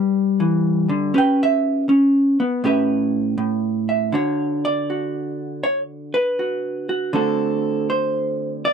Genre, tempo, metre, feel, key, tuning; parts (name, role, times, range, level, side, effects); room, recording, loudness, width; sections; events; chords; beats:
solo jazz; 80 BPM; 4/4; swing 67% on 8ths; D major from 4.1 s; A4 = 440 Hz
vintage hollow-body jazz guitar; solo; 0.0-8.7 s; A2 to G5; -18 LUFS; right 1 dB
little or no reverb; dry, close 1970s-style studio recording; -18 LUFS; side -6 dB against mid
0.0-4.1 A section; 4.1-8.7 B section
hollow-body jazz guitar solo 0.0-4.1
0.0 G; 1.1 Em6; 2.6 A9; 4.1 D; 7.1 D7
0.39 | 1.14 1.89 2.64 3.39 | 4.13 4.88 5.63 6.38 | 7.13 7.88 8.62